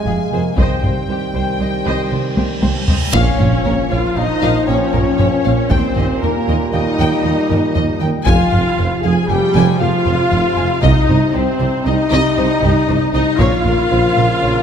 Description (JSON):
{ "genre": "cinematic, hybrid orchestral and electronic film score", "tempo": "117 BPM", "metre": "5/4", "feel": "straight", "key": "Bb dorian", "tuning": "A4 = 440 Hz", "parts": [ { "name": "warm studio violin section", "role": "melody", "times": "0.0-14.5 s", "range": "F4 to Ab5", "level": "-25 LUFS", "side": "left 6 dB", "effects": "none" }, { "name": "clear trombone section", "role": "sustained chords", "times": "0.0-14.6 s", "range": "Bb2 to Bb3", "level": "-24 LUFS", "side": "right 4 dB", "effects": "none" }, { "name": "mellow French horn section", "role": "sustained chords", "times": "0.0-14.6 s", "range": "Ab3 to Ab4", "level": "-20 LUFS", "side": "left 4 dB", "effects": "none" }, { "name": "dark baby grand piano", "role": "texture", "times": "0.0-14.6 s", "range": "F4 to Bb5", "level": "-32 LUFS", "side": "left 1 dB", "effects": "none" }, { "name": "rich symphonic violin section", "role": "second line", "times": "0.1-14.6 s", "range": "G4 to Ab5", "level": "-24 LUFS", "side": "left 3 dB", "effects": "none" }, { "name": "rich studio viola section", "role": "accompaniment", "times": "0.1-14.6 s", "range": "G3 to C5", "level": "-23 LUFS", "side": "equal", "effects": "none" }, { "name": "rich symphonic double bass section", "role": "bass", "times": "0.1-14.5 s", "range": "F1 to Eb2", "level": "-22 LUFS", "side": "right 3 dB", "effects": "none" }, { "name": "warm symphonic cello section", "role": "bass", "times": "0.1-14.5 s", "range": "C2 to C3", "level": "-21 LUFS", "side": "right 3 dB", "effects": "none" }, { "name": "taiko ensemble", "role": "drums", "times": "0.1-13.9 s", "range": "none", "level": "-19 LUFS", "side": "left 1 dB", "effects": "none" }, { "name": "reverse cymbal and impact", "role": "sound effects", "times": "2.1-5.7 s", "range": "none", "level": "-26 LUFS", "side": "equal", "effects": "none" }, { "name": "mellow tuba", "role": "bass", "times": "3.1-14.5 s", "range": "F1 to Eb2", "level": "-22 LUFS", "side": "right 3 dB", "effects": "none" } ], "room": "wet scoring stage reverb, RT60 1.7 s", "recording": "none", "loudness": "-13 LUFS", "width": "side -8 dB against mid", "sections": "0.0-3.1 A section; 3.1-14.6 B section", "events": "reverse cymbal 2.1-3.1; drum fill 2.4-3.1; impact 3.1-5.7", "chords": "0.0 Fm; 0.6 Cm; 3.1 Bbm; 5.7 Eb; 8.3 Fm; 10.8 Cm; 13.4 Bbm" }